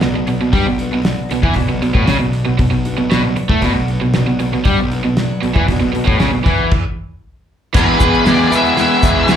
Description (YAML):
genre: classic rock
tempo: 116 BPM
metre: 4/4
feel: straight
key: B dorian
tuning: A4 = 440 Hz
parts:
  - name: picked steel-string acoustic guitar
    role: accompaniment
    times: 0.0-9.4 s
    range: B2 to G#4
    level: -25 LUFS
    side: left 3 dB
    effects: slapback echo
  - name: crunchy overdriven guitar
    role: riff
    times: 0.0-9.4 s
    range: E2 to E4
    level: -19 LUFS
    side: left 9 dB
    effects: slapback echo
  - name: overdriven electric guitar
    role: riff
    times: 0.0-9.4 s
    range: A2 to G#4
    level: -18 LUFS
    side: right 8 dB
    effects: slapback echo
  - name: fuzz picked electric bass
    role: bass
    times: 0.0-9.4 s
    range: A1 to E3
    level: -20 LUFS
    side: equal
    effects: overdrive
  - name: damped 70s drum kit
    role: drums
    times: 0.0-9.4 s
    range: crash cymbal, hi-hat, kick drum, snare drum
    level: -17 LUFS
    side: equal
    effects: none
  - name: clear grand piano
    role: accompaniment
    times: 7.7-8.8 s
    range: E4 to B4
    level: -29 LUFS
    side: left 2 dB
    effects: none
  - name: octave-fuzz lead guitar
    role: melody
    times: 7.8-9.4 s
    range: B4 to E5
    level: -17 LUFS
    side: left 1 dB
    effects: distortion
  - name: tube shaker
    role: percussion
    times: 7.8-9.4 s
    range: none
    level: -33 LUFS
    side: left 4 dB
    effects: none
room: light reverb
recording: live gig heard through the venue's PA, club reverb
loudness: -12 LUFS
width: side -9 dB against mid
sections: 0.0-7.8 A section; 7.8-9.4 B section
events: stop 6.7-7.8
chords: 0.0 Bm; 7.8 E